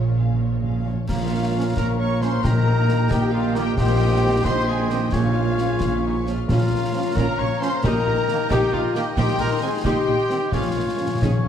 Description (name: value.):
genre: cinematic, heroic adventure film score.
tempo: 89 BPM (dotted quarters).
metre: 6/8.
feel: straight.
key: Bb dorian.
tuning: A4 = 440 Hz.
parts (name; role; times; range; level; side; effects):
dark symphonic violin section; melody; 0.0-11.2 s; Db5 to Db6; -31 LUFS; left 2 dB; none.
warm symphonic violin section; second line; 0.0-11.5 s; F4 to F6; -38 LUFS; left 3 dB; none.
warm symphonic viola section; accompaniment; 0.0-11.5 s; Bb3 to C5; -32 LUFS; right 1 dB; none.
concert harp; arpeggios; 0.0-11.5 s; Bb2 to Db6; -32 LUFS; left 8 dB; none.
clear symphonic double bass section; bass; 0.0-11.5 s; Bb1; -25 LUFS; right 2 dB; none.
warm studio cello section; bass; 0.0-11.5 s; Bb2 to Eb3; -25 LUFS; right 2 dB; none.
timpani; percussion; 0.0-3.1, 5.1-8.5, 10.5-11.5 s; Bb2; -27 LUFS; left 1 dB; none.
mellow clarinet; second line; 1.1-11.5 s; Db5 to Eb5; -35 LUFS; left 2 dB; none.
mellow hollow concert flute; second line; 1.1-11.5 s; Bb5 to Db6; -35 LUFS; left 1 dB; none.
warm oboe; second line; 1.1-11.5 s; F5 to Ab5; -35 LUFS; right 3 dB; none.
mellow French horn section; sustained chords; 1.1-11.2 s; F4 to Db5; -26 LUFS; left 4 dB; none.
warm trumpet; stabs; 1.1-11.2 s; F4 to Db5; -30 LUFS; right 1 dB; none.
concert snare drum, clash cymbals and concert bass drum; drums; 1.1-11.4 s; none; -30 LUFS; left 1 dB; none.
mellow trombone section; sustained chords; 1.6-11.1 s; Eb3 to Db4; -32 LUFS; right 3 dB; none.
room: moderate scoring stage reverb, RT60 1.7 s.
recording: dark, warm production.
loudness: -18 LUFS.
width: side -9 dB against mid.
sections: 0.0-1.1 A section; 1.1-11.5 B section.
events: timpani fill 0.0-1.1, 10.5-11.5.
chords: 0.0 Db/Bb; 1.1 Bbm; 2.4 Eb/Bb; 3.8 Cm/Bb; 5.1 Db/Bb; 6.5 Bbm; 7.8 Eb/Bb; 9.2 Cm/Bb; 10.5 Db/Bb.